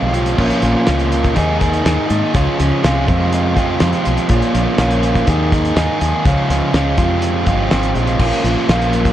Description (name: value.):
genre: indie rock.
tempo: 123 BPM.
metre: 4/4.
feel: straight.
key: Bb minor.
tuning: A4 = 441 Hz.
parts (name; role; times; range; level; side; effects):
overdriven electric guitar; riff; 0.0-9.1 s; F2 to Ab4; -16 LUFS; right 1 dB; none.
fingered electric bass; bass; 0.0-9.1 s; G1 to Ab2; -18 LUFS; equal; none.
cloth-damped thuddy drum kit; drums; 0.1-9.1 s; crash cymbal, hi-hat, kick drum, snare drum; -19 LUFS; equal; none.
room: little or no reverb.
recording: worn, warbling old tape, cassette tape, warbly pitch drift.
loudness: -13 LUFS.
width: side -12 dB against mid.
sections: 0.4-9.1 A section.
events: none.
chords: 0.4 Bbm; 1.4 Ebsus4; 2.3 Db; 3.1 Fm; 4.3 Bbm; 5.3 Ebsus4; 6.2 Db; 7.0 Fm; 8.2 Bbm.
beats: | 0.39 0.88 1.37 1.85 | 2.34 2.83 3.32 3.81 | 4.30 4.79 5.27 5.76 | 6.25 6.74 7.22 7.71 | 8.20 8.69.